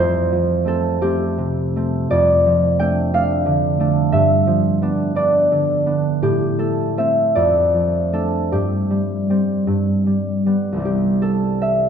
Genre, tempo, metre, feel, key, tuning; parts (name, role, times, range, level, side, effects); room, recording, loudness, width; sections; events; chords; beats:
classical, solo harp piece; 49-60 BPM (dotted quarters); 6/8; rubato; C major; A4 = 440 Hz
concert harp; solo; 0.0-11.9 s; C2 to G5; -16 LUFS; equal
wet scoring stage reverb, RT60 1.6 s; minimal, uncompressed stereo recording; -16 LUFS; side -7 dB against mid
0.0-10.9 A section; 10.9-11.9 B section
0.0 F; 2.1 Dm/F; 4.1 G7; 6.2 Am; 7.3 Dm/F; 8.5 C5/G; 9.7 G; 10.9 C
1.01 | 2.11 3.13 | 4.13 5.15 | 6.21 7.34 | 8.51 9.67 | 10.85